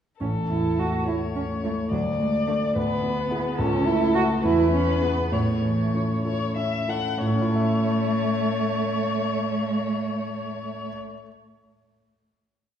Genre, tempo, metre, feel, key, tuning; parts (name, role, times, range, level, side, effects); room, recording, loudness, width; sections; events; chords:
quick classical-period movement for piano trio; 62-72 BPM (dotted quarters); 6/8; rubato; A major; A4 = 445 Hz
muted violin; melody; 0.2-10.9 s; A4 to F#5; -28 LUFS; left 5 dB
muted cello; second line; 0.2-10.9 s; F#3 to F#4; -26 LUFS; right 3 dB
dark grand piano; accompaniment; 0.2-11.3 s; A1 to E5; -25 LUFS; equal
wet recital hall reverb, RT60 1.6 s; heard from further back in the room; -22 LUFS; side -9 dB against mid
0.2-7.2 A section; 7.2-10.9 final chord
slowing down 2.8-7.2
0.2 A; 1.9 D5; 2.8 E7/D; 3.6 A/C#; 4.4 E; 5.3 A